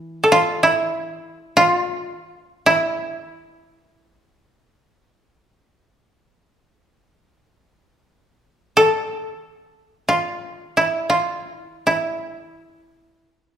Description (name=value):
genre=japanese traditional, Japanese chamber music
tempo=free time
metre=none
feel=none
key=unclear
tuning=A4 = 439 Hz
part: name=koto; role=melody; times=0.0-13.6 s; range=E4 to A4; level=-17 LUFS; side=right 1 dB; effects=none
part: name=koto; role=accompaniment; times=0.0-1.1 s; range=E3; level=-42 LUFS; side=left 1 dB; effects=none
room=moderate recital hall reverb, RT60 1.5 s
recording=recorded in a church or concert hall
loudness=-18 LUFS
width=side -9 dB against mid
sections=0.0-13.6 A section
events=none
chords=none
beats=free time